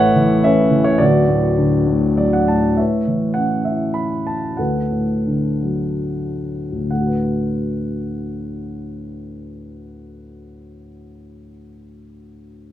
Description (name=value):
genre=classical, lyrical solo piano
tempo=60-110 BPM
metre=3/4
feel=rubato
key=D major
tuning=A4 = 440 Hz
part: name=dark baby grand piano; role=solo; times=0.0-12.7 s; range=D1 to B5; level=-16 LUFS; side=equal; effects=none
room=moderate recital hall reverb, RT60 1.5 s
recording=minimal, uncompressed stereo recording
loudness=-16 LUFS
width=side -12 dB against mid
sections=0.0-2.8 A section; 2.8-6.9 B section; 6.9-12.6 C section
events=grand piano fill 1.9-2.8; slowing down 2.8-6.9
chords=0.0 Aadd9; 1.0 D6; 2.8 Aadd9; 4.6 D6